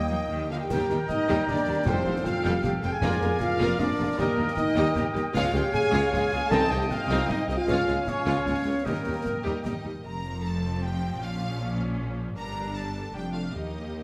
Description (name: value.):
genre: cinematic, heroic adventure film score.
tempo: 154 BPM.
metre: 3/4.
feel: straight.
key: unclear.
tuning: A4 = 443 Hz.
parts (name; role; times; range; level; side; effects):
clear symphonic violin section; melody; 0.0-14.0 s; Bb4 to Bb5; -41 LUFS; equal; none.
clear clarinet; second line; 0.0-9.9 s; Bb3 to Eb5; -39 LUFS; equal; none.
clear oboe; second line; 0.0-9.8 s; D5 to G5; -38 LUFS; equal; none.
flute section; second line; 0.0-9.8 s; F5 to Eb6; -40 LUFS; equal; none.
rich symphonic violin section; second line; 0.0-14.0 s; Eb4 to G5; -42 LUFS; equal; none.
clear symphonic viola section; accompaniment; 0.0-14.0 s; F3 to G4; -37 LUFS; equal; none.
mellow French horn section; sustained chords; 0.0-9.6 s; Bb3 to A4; -32 LUFS; equal; none.
mellow trumpet section; stabs; 0.0-9.6 s; Bb4 to A5; -34 LUFS; equal; none.
rich symphonic double bass section; bass; 0.0-14.0 s; F1 to Eb2; -36 LUFS; equal; none.
clear symphonic cello section; bass; 0.1-14.0 s; C2 to F3; -37 LUFS; equal; none.
mellow tuba; bass; 0.7-9.9 s; F1 to Eb2; -37 LUFS; equal; none.
concert snare drum, clash cymbals and concert bass drum; drums; 0.7-9.8 s; none; -37 LUFS; equal; none.
timpani; percussion; 1.9-3.6, 6.5-7.1 s; F2 to C3; -35 LUFS; equal; none.
room: wet scoring stage reverb, RT60 1.6 s.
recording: none.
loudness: -27 LUFS.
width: mono.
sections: 0.7-10.0 A section; 10.0-14.0 B section.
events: none.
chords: 0.0 Eb; 1.9 Fadd9; 3.0 Bb7/F; 4.2 Eb; 5.3 Db; 6.5 Cm; 7.7 Db; 8.9 Eb; 10.0 Fsus4; 11.2 Bbm; 12.4 Gm.